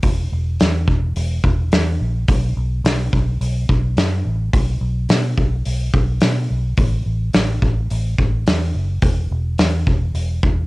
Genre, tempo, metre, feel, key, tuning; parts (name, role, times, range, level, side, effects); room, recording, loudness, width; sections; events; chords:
rock, shoegaze and dream pop; 107 BPM; 4/4; straight; A4 = 440 Hz
vintage muted fingered electric bass; bass; 0.0-10.7 s; E1 to B2; -19 LUFS; equal
loose indie drum kit; drums; 0.0-10.6 s; hi-hat, kick drum, snare drum; -18 LUFS; equal; cassette tape
light reverb; home recording on cassette; -16 LUFS; side -21 dB against mid
0.0-10.7 A section